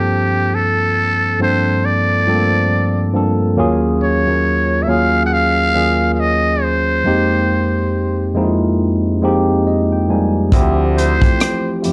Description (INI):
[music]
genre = R&B, neo-soul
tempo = 69 BPM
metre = 4/4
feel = swing 60% on 16ths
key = unclear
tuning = A4 = 440 Hz
[part]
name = trumpet with metal mute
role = melody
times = 0.0-11.8 s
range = G4 to Gb5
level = -20 LUFS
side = equal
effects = none
[part]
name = barky tine electric piano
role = accompaniment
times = 0.0-11.9 s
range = Eb2 to Ab5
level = -18 LUFS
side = equal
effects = subtle chorus
[part]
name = clear concert grand piano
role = bass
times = 10.5-11.9 s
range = D2 to F2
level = -19 LUFS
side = equal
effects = none
[part]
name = crunchy breakbeat drum kit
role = drums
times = 10.5-11.9 s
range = hi-hat, kick drum, rim click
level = -17 LUFS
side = equal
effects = none
[sound]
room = light reverb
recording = dark, warm production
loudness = -16 LUFS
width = mono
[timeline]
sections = 0.0-11.9 A section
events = tine electric piano fill 9.2-10.5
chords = 0.0 Gm11; 3.6 Ebm11; 7.0 Fm11; 10.5 Dm11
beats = | 0.09 0.96 1.83 2.70 | 3.57 4.44 5.31 6.18 | 7.04 7.92 8.78 9.65 | 10.52 11.39